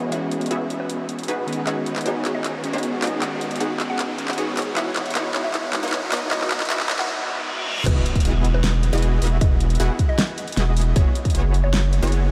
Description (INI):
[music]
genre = future bass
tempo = 155 BPM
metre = 4/4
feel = half-time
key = unclear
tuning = A4 = 440 Hz
[part]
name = glassy digital keys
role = accompaniment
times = 0.0-7.9 s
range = D#3 to D#5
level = -33 LUFS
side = equal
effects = chorus, sidechain pumping, diffuse ambient delay
[part]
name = supersaw stab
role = riff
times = 0.0-12.3 s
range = B3 to F#5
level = -29 LUFS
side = equal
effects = lush chorus, sidechain pumping, low-pass filter, diffuse ambient delay
[part]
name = riser, reverse cymbal and impact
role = sound effects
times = 0.1-9.4 s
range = none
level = -35 LUFS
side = equal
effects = none
[part]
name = mallet-like synth pluck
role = melody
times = 0.1-11.8 s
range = B4 to F#5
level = -35 LUFS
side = equal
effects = chorus, phaser, sidechain pumping, diffuse ambient delay
[part]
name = pop drum kit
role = drums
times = 0.1-12.2 s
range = crash cymbal, handclaps, hi-hat, snare drum, toms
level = -29 LUFS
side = equal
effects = none
[part]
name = saturated sub bass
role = bass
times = 7.9-12.3 s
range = E1 to F#1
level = -22 LUFS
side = equal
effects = sidechain pumping
[part]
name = electronic kick drum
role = drums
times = 7.9-11.3 s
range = none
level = -22 LUFS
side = equal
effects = none
[sound]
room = wet huge ambient reverb, RT60 7.6 s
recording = dreamy mix soaked in reverb, high-pass filter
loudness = -22 LUFS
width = mono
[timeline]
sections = 0.0-7.9 A section; 7.9-12.3 B section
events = build-up 0.0-7.9; riser 0.1-7.1; filter sweep on supersaw synth 0.0-7.9; filter sweep 0.0-7.9; drum fill 1.7-7.1, 7.7; reverse cymbal 7.1-7.9; drop 7.9-12.3; impact 7.9-9.4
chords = 0.0 F#9sus4; 1.5 B69; 4.8 C#m11; 7.9 Emaj9; 11.0 F#9sus4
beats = | 0.12 0.51 0.90 1.28 | 1.67 2.06 2.44 2.83 | 3.22 3.60 3.99 4.38 | 4.77 5.15 5.54 5.93 | 6.32 6.70 7.09 7.48 | 7.86 8.25 8.64 9.03 | 9.41 9.80 10.19 10.57 | 10.96 11.35 11.73 12.12